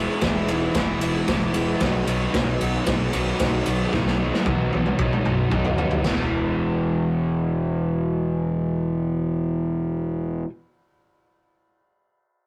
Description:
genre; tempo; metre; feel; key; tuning
garage rock duo or trio; 113 BPM; 4/4; straight; E major; A4 = 440 Hz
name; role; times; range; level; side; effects
crunchy overdriven guitar; riff; 0.0-10.5 s; E2 to E4; -26 LUFS; equal; none
fuzz fingered electric bass; bass; 0.0-10.4 s; E1 to D#2; -30 LUFS; equal; overdrive
raw garage drum kit; drums; 0.2-6.2 s; china cymbal, kick drum, ride cymbal, snare drum, toms; -26 LUFS; equal; none
room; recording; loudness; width
light reverb; rough rehearsal-room recording, warm saturation; -23 LUFS; mono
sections
0.0-6.1 A section; 6.1-10.3 B section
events
drum fill 3.9-6.1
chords
0.0 E; 1.8 B; 6.1 E5

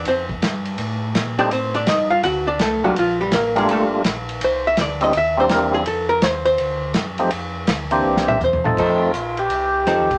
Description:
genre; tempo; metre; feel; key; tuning
soul jazz organ trio; 165 BPM; 4/4; swing 65% on 8ths; F mixolydian; A4 = 440 Hz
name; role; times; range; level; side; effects
archtop guitar, miked and amplified; accompaniment; 0.0-10.1 s; F3 to F#5; -21 LUFS; equal; none
mellow tonewheel organ; bass; 0.0-10.2 s; G1 to Bb2; -32 LUFS; equal; chorus vibrato, slow rotary speaker
warm soul drum kit; drums; 0.1-10.2 s; crash cymbal, hi-hat, kick drum, ride cymbal, snare drum, toms; -26 LUFS; equal; none
percussive tonewheel organ; melody; 1.4-10.2 s; E3 to A4; -21 LUFS; equal; slow rotary speaker
room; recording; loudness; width
moderate club reverb, RT60 0.5 s; none; -19 LUFS; mono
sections
0.0-8.8 A section; 8.8-10.2 B section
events
hollow-body jazz guitar solo 0.0-8.8; drum fill 8.0-8.8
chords
0.1 F; 1.5 Am7b5; 2.2 D7; 3.0 Gm7; 4.4 C7; 5.9 F7; 6.6 D7; 7.3 F5; 8.0 C7; 8.8 F7

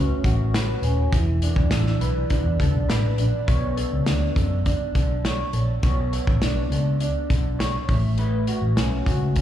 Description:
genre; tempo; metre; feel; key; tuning
indie pop, bedroom pop; 102 BPM; 4/4; straight; unclear; A4 = 440 Hz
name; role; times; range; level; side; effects
electric guitar through a small old amp; accompaniment; 0.0-9.4 s; E3 to C#5; -26 LUFS; equal; analog chorus, warbly pitch drift, slapback echo
vintage muted fingered electric bass; bass; 0.2-9.4 s; D#1 to F#2; -22 LUFS; equal; none
loose indie drum kit; drums; 0.2-9.4 s; hi-hat, kick drum, snare drum; -24 LUFS; equal; none
room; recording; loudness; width
small room ambience; live gig heard through the venue's PA, club reverb; -20 LUFS; side -11 dB against mid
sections
0.0-3.5 A section; 3.5-9.4 B section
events
none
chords
0.0 A69; 1.1 E7sus4; 3.5 Bm9; 7.9 A69

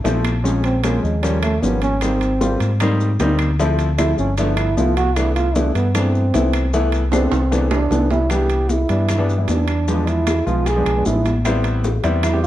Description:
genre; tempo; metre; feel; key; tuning
Afro-Cuban jazz; 153 BPM; 4/4; straight; C major; A4 = 439 Hz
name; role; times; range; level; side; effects
warm baby grand piano; accompaniment; 0.0-12.5 s; E3 to G4; -22 LUFS; left 2 dB; none
fingered electric bass; bass; 0.0-12.5 s; G1 to Ab2; -20 LUFS; equal; none
timbales; percussion; 0.0-12.4 s; none; -29 LUFS; right 6 dB; none
bongos; percussion; 0.1-12.5 s; none; -29 LUFS; left 4 dB; none
congas; percussion; 0.1-12.5 s; none; -28 LUFS; equal; none
maracas; percussion; 0.1-12.5 s; none; -38 LUFS; left 5 dB; none
claves; percussion; 0.2-12.4 s; none; -35 LUFS; left 8 dB; none
mellow trombone; melody; 0.5-12.5 s; G3 to G#4; -21 LUFS; right 3 dB; none
room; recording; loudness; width
light reverb; dark, warm production; -16 LUFS; side -13 dB against mid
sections
0.0-8.3 A section; 8.3-12.5 A section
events
trombone solo 0.0-12.5; drum fill 7.1-8.3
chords
0.4 Bbm9; 1.2 Eb7; 2.0 Abmaj9; 3.6 Dm9; 4.4 G13; 5.2 Cmaj13; 8.3 Cmaj7; 9.9 E7b9; 11.5 Am9

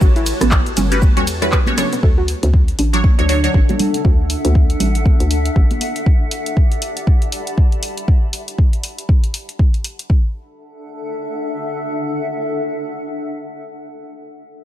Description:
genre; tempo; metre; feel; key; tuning
deep house; 119 BPM; 4/4; swing 59% on 16ths; D major; A4 = 439 Hz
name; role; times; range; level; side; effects
hollow soft pad; sustained chords; 0.0-2.0 s; A3 to C#5; -28 LUFS; equal; ensemble chorus, sidechain pumping
warbly dusty pluck; arpeggios; 0.0-4.0 s; B3 to B4; -24 LUFS; right 2 dB; chorus, sidechain pumping, dub echo
hollow knocking FM bass; bass; 0.0-5.7 s; G1 to E2; -18 LUFS; equal; sidechain pumping
electronic kick drum; drums; 0.0-10.2 s; none; -13 LUFS; equal; none
punchy analog drum machine; drums; 0.0-10.1 s; handclaps, hi-hat, ride cymbal, rim click, shaker; -24 LUFS; equal; none
string machine, violins; texture; 0.0-2.0 s; A4 to A5; -34 LUFS; left 1 dB; ensemble chorus
congas; percussion; 0.4-5.8 s; none; -24 LUFS; right 3 dB; sidechain pumping on perc
filtered dub chord stab; stabs; 0.9-3.6 s; F#3 to C#5; -20 LUFS; equal; phaser, sidechain pumping, dub echo
granular cloud pad; texture; 2.9-13.9 s; D4 to B5; -24 LUFS; left 1 dB; built-in reverb, sidechain pumping
room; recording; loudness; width
little or no reverb; none; -14 LUFS; side -12 dB against mid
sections
0.0-2.0 A section; 2.0-10.1 B section; 10.1-14.1 C section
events
drop 0.0-2.0; filter sweep on synth pluck 2.0-4.0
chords
0.0 A13; 2.0 Dmaj7; 6.1 Gmaj9; 10.1 D

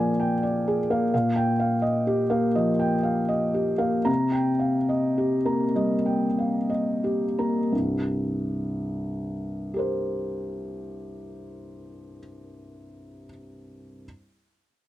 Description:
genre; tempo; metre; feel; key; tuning
neoclassical minimalist piano; 58-87 BPM; 4/4; rubato; C minor; A4 = 440 Hz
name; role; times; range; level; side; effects
felt-muted upright piano; solo; 0.0-14.1 s; C2 to Bb5; -24 LUFS; equal; none
room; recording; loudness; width
light reverb; dry, close 1970s-style studio recording; -22 LUFS; side -14 dB against mid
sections
0.0-7.7 A section; 7.7-11.8 B section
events
slowing down 0.0-7.7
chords
0.0 Bb7; 1.1 Ebadd9/Bb; 4.1 Cm7; 7.7 C5

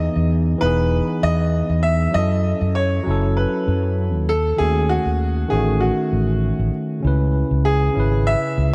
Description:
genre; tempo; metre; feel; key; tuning
sunset chillout; 98 BPM; 4/4; straight; unclear; A4 = 438 Hz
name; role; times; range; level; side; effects
clear grand piano; melody; 0.0-8.7 s; F#4 to E5; -25 LUFS; equal; delay
bright tine electric piano; accompaniment; 0.0-8.7 s; C#3 to B4; -25 LUFS; equal; delay
fretless electric bass; bass; 0.0-8.7 s; E1 to F#2; -22 LUFS; equal; none
room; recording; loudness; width
moderate lush hall reverb, RT60 2.4 s; dark, warm production; -19 LUFS; mono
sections
0.0-8.7 A section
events
none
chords
0.0 Emaj7; 2.1 F#m7; 4.3 D#m7b5; 7.0 C#m7

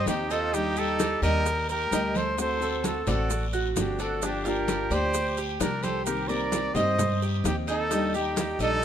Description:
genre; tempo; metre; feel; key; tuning
latin, Cuban son and guajira; 130 BPM; 4/4; straight; G minor; A4 = 440 Hz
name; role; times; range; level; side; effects
warm trumpet; melody; 0.0-8.8 s; G4 to Eb5; -29 LUFS; equal; none
breathy bright jazz flute; second line; 0.0-8.8 s; D4 to C5; -34 LUFS; right 4 dB; none
Cuban tres; arpeggios; 0.0-8.8 s; D4 to Eb5; -32 LUFS; right 4 dB; none
upright bass; bass; 0.0-8.8 s; G1 to G2; -31 LUFS; equal; none
nylon-string guitar; accompaniment; 0.1-8.8 s; C3 to G4; -34 LUFS; left 5 dB; none
bongos; percussion; 0.1-8.8 s; none; -35 LUFS; left 7 dB; none
congas; percussion; 0.1-8.6 s; none; -34 LUFS; right 1 dB; none
guiro; percussion; 0.1-8.8 s; none; -40 LUFS; left 4 dB; none
maracas; percussion; 0.1-8.8 s; none; -38 LUFS; right 7 dB; none
room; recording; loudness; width
light reverb; minimal, uncompressed stereo recording; -24 LUFS; side -9 dB against mid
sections
0.0-8.8 A section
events
none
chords
0.0 Cm7; 0.5 Ebmaj7; 2.4 D7; 4.2 Gm7; 6.1 Cm7; 7.9 Ebmaj7

